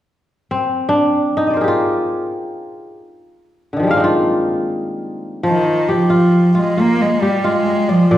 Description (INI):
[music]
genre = west african traditional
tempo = free time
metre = none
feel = none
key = F dorian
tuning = A4 = 441 Hz
[part]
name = kora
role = arpeggios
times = 0.5-8.2 s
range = Bb2 to F5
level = -16 LUFS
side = left 1 dB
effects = none
[part]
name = warm cello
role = melody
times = 5.5-8.2 s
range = Eb3 to Bb3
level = -14 LUFS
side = right 1 dB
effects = none
[sound]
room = wet recital hall reverb, RT60 1.7 s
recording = heard from further back in the room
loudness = -14 LUFS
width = side -12 dB against mid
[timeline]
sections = 0.1-5.4 A section; 5.4-8.2 B section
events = kora solo 0.1-5.4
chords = 0.1 Fm